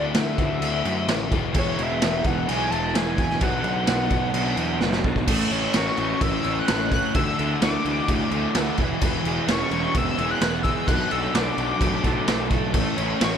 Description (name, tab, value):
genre	indie rock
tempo	129 BPM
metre	4/4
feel	straight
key	A major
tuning	A4 = 440 Hz
part	pulse-width lead	melody	0.0-13.4 s	C#5 to F#6	-28 LUFS	left 2 dB	chorus, slapback echo
part	raw garage guitar	riff	0.0-13.4 s	A2 to F#4	-29 LUFS	left 10 dB	overdrive
part	fuzz picked electric bass	bass	0.0-13.4 s	E1 to F#2	-28 LUFS	equal	overdrive
part	raw garage drum kit	drums	0.1-13.3 s	crash cymbal, kick drum, snare drum	-24 LUFS	equal	none
part	crunchy overdriven guitar	riff	1.5-13.4 s	B2 to C#5	-28 LUFS	right 11 dB	wide subtle chorus, slapback echo
room	little or no reverb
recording	none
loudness	-20 LUFS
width	side -8 dB against mid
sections	0.0-5.3 A section; 5.3-13.4 B section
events	drum fill 4.8-5.3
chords	0.0 Dsus2; 1.3 E; 3.4 Bm; 5.3 A6; 7.2 Dsus2; 8.8 E6; 10.9 Bm7; 12.8 A6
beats	0.16 0.62 1.09 | 1.56 2.03 2.49 2.96 | 3.43 3.89 4.36 4.83 | 5.29 5.76 6.22 6.69 | 7.16 7.62 8.09 8.55 | 9.02 9.49 9.95 10.42 | 10.89 11.36 11.82 12.29 | 12.76 13.22